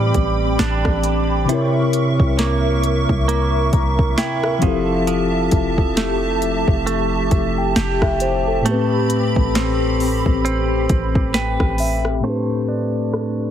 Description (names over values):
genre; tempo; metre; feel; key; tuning
contemporary R&B; 67 BPM; 4/4; swing 58% on 16ths; A minor; A4 = 443 Hz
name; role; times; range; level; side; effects
mellow tine electric piano; accompaniment; 0.0-13.5 s; A2 to Db6; -21 LUFS; left 3 dB; slow stereo tremolo
hollow soft pad; sustained chords; 0.0-12.2 s; C4 to D6; -24 LUFS; left 2 dB; ensemble chorus
direct-recorded clean electric guitar; arpeggios; 0.0-13.5 s; A2 to C5; -24 LUFS; right 8 dB; spring reverb, tape echo
warm 808-style bass; bass; 0.0-12.2 s; F1 to A2; -22 LUFS; equal; none
smooth R&B drum kit; drums; 0.1-13.4 s; hi-hat, kick drum, rim click, snare drum; -20 LUFS; equal; overdrive
room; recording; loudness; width
light reverb; heavily compressed radio sound, low-pass filter; -16 LUFS; side -10 dB against mid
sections
0.0-12.2 A section; 12.2-13.5 B section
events
tine electric piano fill 10.9-12.2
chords
0.0 Am11; 1.5 C7b9; 4.6 Fmaj9; 8.7 Am9; 12.2 Am11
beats
0.59 | 1.49 2.39 3.28 4.18 | 5.07 5.97 6.86 7.76 | 8.65 9.55 10.45 11.34 | 12.24 13.13